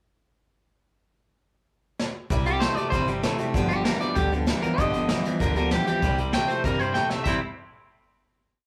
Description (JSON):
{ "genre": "rockabilly", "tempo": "194 BPM", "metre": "4/4", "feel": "straight", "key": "C major", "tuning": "A4 = 440 Hz", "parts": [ { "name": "vintage brush drum kit", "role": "drums", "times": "2.0-7.3 s", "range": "crash cymbal, hi-hat, kick drum, snare drum", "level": "-31 LUFS", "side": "equal", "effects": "none" }, { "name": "picked steel-string acoustic guitar", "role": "accompaniment", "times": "2.3-7.4 s", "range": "G2 to G4", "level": "-32 LUFS", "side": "equal", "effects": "none" }, { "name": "twangy electric guitar", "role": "riff", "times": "2.3-7.4 s", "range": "G2 to E4", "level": "-31 LUFS", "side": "equal", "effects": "spring reverb" }, { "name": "upright bass", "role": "bass", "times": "2.3-7.4 s", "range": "G1 to G2", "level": "-33 LUFS", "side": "equal", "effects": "none" }, { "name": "electric guitar at the edge of break-up", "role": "melody", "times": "2.5-7.4 s", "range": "G4 to G5", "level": "-29 LUFS", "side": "equal", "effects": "none" } ], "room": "wet studio reverb, RT60 0.6 s", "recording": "rough rehearsal-room recording", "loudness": "-25 LUFS", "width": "mono", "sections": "1.1-2.3 pickup bar; 2.3-7.3 A section; 7.3-8.5 final chord", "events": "drum fill 2.0-2.3, 7.0-7.3", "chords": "1.1 N.C.; 2.3 C; 3.5 G7; 6.0 C", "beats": "| 1.07 1.38 1.69 1.99 | 2.30 2.61 2.92 3.23 | 3.54 3.85 4.17 4.47 | 4.79 5.09 5.41 5.71 | 6.02 6.33 6.64 6.95 | 7.26" }